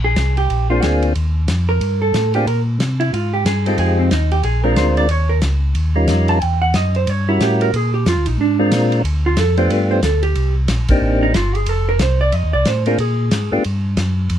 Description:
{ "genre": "soul jazz organ trio", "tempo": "182 BPM", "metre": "4/4", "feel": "swing 62% on 8ths", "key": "Bb major", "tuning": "A4 = 440 Hz", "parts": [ { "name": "vintage hollow-body jazz guitar", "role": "accompaniment", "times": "0.0-13.6 s", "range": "C4 to A5", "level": "-20 LUFS", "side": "right 4 dB", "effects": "none" }, { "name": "mellow tonewheel organ", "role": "bass", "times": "0.0-14.4 s", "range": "F1 to C3", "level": "-17 LUFS", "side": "equal", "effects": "overdrive, chorus vibrato, slow rotary speaker" }, { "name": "warm soul drum kit", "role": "drums", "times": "0.2-14.4 s", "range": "hi-hat, kick drum, ride cymbal, snare drum", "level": "-24 LUFS", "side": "left 1 dB", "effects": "none" }, { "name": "percussive tonewheel organ", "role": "melody", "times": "0.7-13.6 s", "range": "G3 to Bb4", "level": "-18 LUFS", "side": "left 1 dB", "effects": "slow rotary speaker" } ], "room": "little or no reverb", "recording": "close, detailed microphones", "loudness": "-14 LUFS", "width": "side -10 dB against mid", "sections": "0.0-14.4 A section", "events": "hollow-body jazz guitar solo 0.0-14.4", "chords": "0.0 Bb9; 1.2 Ebadd9; 2.5 Bbsus2; 3.8 Fm7; 4.4 Bb9; 5.1 Eb9; 6.4 Edim7; 7.7 Bb9; 9.0 Dm; 10.4 Cm7; 11.7 F7; 13.0 Bb7; 13.6 N.C." }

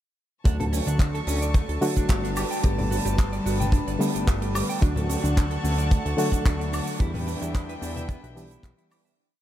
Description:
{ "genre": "nu-disco, nu disco", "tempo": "110 BPM", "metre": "4/4", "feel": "straight", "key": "D major", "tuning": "A4 = 440 Hz", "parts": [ { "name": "reed electric piano", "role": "accompaniment", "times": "0.4-9.2 s", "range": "D3 to G4", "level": "-30 LUFS", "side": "equal", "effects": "fast tremolo, sidechain pumping, diffuse ambient delay" }, { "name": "warm studio string section", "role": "sustained chords", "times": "0.5-9.2 s", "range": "D3 to C#6", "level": "-33 LUFS", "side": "left 1 dB", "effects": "sidechain pumping" }, { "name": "clean electric guitar", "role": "riff", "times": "0.5-9.1 s", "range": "D3 to G5", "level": "-35 LUFS", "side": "right 2 dB", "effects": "analog chorus, diffuse ambient delay" }, { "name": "fat analog bass", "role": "bass", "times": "0.5-8.7 s", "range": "G1 to E2", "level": "-28 LUFS", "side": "equal", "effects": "none" }, { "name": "kick drum", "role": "drums", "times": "0.5-8.8 s", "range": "none", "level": "-21 LUFS", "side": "equal", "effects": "none" }, { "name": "tight funk drum kit", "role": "drums", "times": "0.5-9.2 s", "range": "handclaps, hi-hat, shaker, woodblock", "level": "-33 LUFS", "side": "right 2 dB", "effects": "none" }, { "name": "congas", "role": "percussion", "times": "0.6-8.1 s", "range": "none", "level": "-36 LUFS", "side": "left 2 dB", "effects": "none" } ], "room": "light reverb, small room reverb", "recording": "none", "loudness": "-22 LUFS", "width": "side -12 dB against mid", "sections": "0.5-9.2 drop", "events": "drop 0.5-9.2; fade-out 6.3-9.2", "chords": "0.5 Dmaj7; 2.4 Gadd9; 4.8 Dmaj7; 7.0 Em7" }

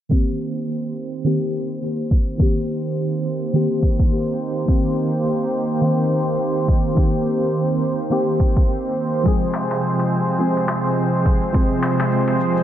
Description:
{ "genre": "organic downtempo", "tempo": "105 BPM", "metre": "4/4", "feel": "swing 59% on 16ths", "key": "C minor", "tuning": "A4 = 439 Hz", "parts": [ { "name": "deep mellow chord stab", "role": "accompaniment", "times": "0.1-12.6 s", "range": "Eb3 to Ab4", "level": "-24 LUFS", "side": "left 1 dB", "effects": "chorus, vintage 12-bit sampler grit, sidechain pumping, analog delay" }, { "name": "warm analog pad", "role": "sustained chords", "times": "0.1-12.6 s", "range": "C3 to C5", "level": "-21 LUFS", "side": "right 1 dB", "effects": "chorus, tremolo, sidechain pumping" }, { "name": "electronic kick drum", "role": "drums", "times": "0.1-11.7 s", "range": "none", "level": "-17 LUFS", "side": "equal", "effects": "none" }, { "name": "shaker", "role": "drums", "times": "0.1-12.6 s", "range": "none", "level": "-62 LUFS", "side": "left 1 dB", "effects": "none" }, { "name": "darbuka", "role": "percussion", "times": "9.5-12.4 s", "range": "none", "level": "-30 LUFS", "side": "left 2 dB", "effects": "none" } ], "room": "wet plate reverb, RT60 2.7 s", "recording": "dreamy mix soaked in reverb, low-pass filter, nothing above 7.9 kHz", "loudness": "-18 LUFS", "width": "side -11 dB against mid", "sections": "0.1-12.6 A section", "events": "filter sweep 0.1-12.6", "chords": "0.1 Cm7; 9.3 Fm/C" }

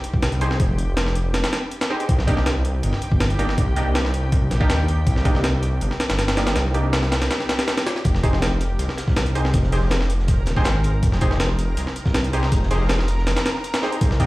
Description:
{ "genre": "drum and bass, jungle", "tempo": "161 BPM", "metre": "4/4", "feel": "straight", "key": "F minor", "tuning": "A4 = 440 Hz", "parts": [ { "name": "breakbeat sampler-style drum kit", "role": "drums", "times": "0.0-14.3 s", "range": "hi-hat, kick drum, snare drum", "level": "-21 LUFS", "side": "equal", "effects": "none" }, { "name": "backwards swelling texture", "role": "texture", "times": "0.0-14.3 s", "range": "G4 to Bb5", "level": "-34 LUFS", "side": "equal", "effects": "built-in reverb" }, { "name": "detuned saw bass", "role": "bass", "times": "0.1-14.3 s", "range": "Eb1 to Eb2", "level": "-21 LUFS", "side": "equal", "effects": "none" }, { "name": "orchestra-hit-like synth stab", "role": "stabs", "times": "0.4-14.3 s", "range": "Bb3 to C5", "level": "-28 LUFS", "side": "right 1 dB", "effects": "built-in reverb, dub echo" }, { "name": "crunchy breakbeat drum kit", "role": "drums", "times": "8.0-14.3 s", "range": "hi-hat, snare drum", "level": "-36 LUFS", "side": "equal", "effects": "none" } ], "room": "light reverb", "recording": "played on a big sound system in a bare room, large studio reverb, vinyl crackle", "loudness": "-18 LUFS", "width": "side -19 dB against mid", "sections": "0.0-14.3 A section", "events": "break 7.3-8.1", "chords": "0.0 Fm7; 2.1 Cm7; 8.1 Fm7" }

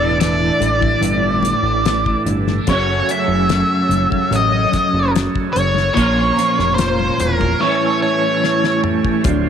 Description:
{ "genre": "psychedelic rock", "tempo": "73 BPM", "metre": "4/4", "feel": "straight", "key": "unclear", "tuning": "A4 = 440 Hz", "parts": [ { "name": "octave-fuzz lead guitar", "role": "melody", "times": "0.0-8.8 s", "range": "Bb4 to E5", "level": "-18 LUFS", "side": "equal", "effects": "wah, distortion, tape echo" }, { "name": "combo organ", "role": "sustained chords", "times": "0.0-9.5 s", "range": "E3 to C6", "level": "-27 LUFS", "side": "right 12 dB", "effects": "lush chorus" }, { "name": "twangy electric guitar", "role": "riff", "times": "0.0-9.5 s", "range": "D2 to Bb4", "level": "-19 LUFS", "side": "right 1 dB", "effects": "rotary speaker, double-tracked left and right" }, { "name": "fat analog bass", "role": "bass", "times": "0.0-9.5 s", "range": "D1 to Bb1", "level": "-20 LUFS", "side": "equal", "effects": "none" }, { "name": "damped 70s drum kit", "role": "drums", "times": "0.2-9.4 s", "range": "hi-hat, kick drum, snare drum, toms", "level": "-21 LUFS", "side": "left 4 dB", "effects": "none" }, { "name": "congas", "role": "percussion", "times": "0.6-7.6 s", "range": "none", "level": "-27 LUFS", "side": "left 13 dB", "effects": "none" } ], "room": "light reverb, small room reverb", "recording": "1960s-style stereo with parts hard left and right", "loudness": "-14 LUFS", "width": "side -8 dB against mid", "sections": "0.0-9.3 A section", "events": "drum fill 8.4-9.3", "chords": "0.0 Asus4; 2.7 F#m; 6.0 Bbmadd9; 7.6 A7" }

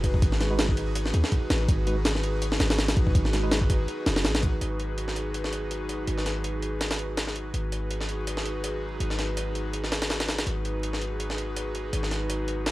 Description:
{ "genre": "drum and bass, jungle", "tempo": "164 BPM", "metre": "4/4", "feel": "swing 55% on 16ths", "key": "G# minor", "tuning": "A4 = 441 Hz", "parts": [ { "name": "airy breathy pad", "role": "sustained chords", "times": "0.0-12.7 s", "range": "D#4 to B4", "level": "-32 LUFS", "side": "equal", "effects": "chorus" }, { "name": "warm 808-style bass", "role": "bass", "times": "0.0-12.7 s", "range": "F#1 to D#2", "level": "-29 LUFS", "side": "equal", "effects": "none" }, { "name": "jungle sampler-style drum kit", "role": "drums", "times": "0.0-12.7 s", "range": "hi-hat, kick drum, snare drum", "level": "-27 LUFS", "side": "equal", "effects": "high-pass filter on hats, high-pass filter on kick, high-pass filter on snare, high-pass filter on room" }, { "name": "mellow tine electric piano", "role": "stabs", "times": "0.4-3.6 s", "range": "G#3 to B4", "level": "-35 LUFS", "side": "right 1 dB", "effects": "medium stereo tremolo, low-pass filter, dub echo" } ], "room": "digital ambience", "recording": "dry, gritty hardware recording, vinyl crackle", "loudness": "-25 LUFS", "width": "side -17 dB against mid", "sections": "0.0-4.6 A section; 4.6-12.7 B section", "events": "drop 0.0-4.6", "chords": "0.0 G#m7" }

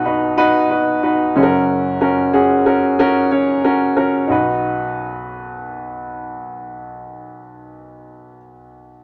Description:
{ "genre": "pop", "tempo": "92 BPM", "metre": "4/4", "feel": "swing 56% on 16ths", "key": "B major", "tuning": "A4 = 439 Hz", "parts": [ { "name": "warm upright piano", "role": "solo", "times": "0.0-9.0 s", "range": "F#1 to C#5", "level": "-18 LUFS", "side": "equal", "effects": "none" } ], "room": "moderate studio reverb, RT60 0.6 s", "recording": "faint mains hum", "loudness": "-16 LUFS", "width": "mono", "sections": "0.0-4.3 A section; 4.3-6.9 B section", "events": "none", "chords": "0.0 B; 1.4 F#; 4.3 B" }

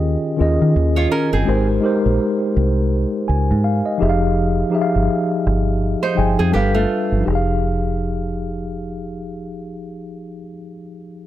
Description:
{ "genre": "R&B", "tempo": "83 BPM", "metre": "4/4", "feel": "swing 58% on 16ths", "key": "F minor", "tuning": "A4 = 440 Hz", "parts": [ { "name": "mellow tine electric piano", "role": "accompaniment", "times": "0.0-11.3 s", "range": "Eb3 to Ab5", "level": "-20 LUFS", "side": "left 1 dB", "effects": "medium stereo tremolo" }, { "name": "deep dub fingered electric bass", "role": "bass", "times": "0.0-10.4 s", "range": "F1 to Eb3", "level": "-19 LUFS", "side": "equal", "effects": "none" }, { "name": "nylon-string guitar", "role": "second line", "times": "1.0-1.7, 6.0-7.2 s", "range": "A3 to Db5", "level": "-22 LUFS", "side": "right 4 dB", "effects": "none" } ], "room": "light reverb, small room reverb", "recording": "none", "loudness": "-16 LUFS", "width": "side -13 dB against mid", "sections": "0.0-7.2 A section; 7.2-10.1 B section", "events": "none", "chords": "0.0 Eb7sus4; 1.5 Abmaj7; 4.0 Fm9; 6.5 G7; 7.2 Fm9" }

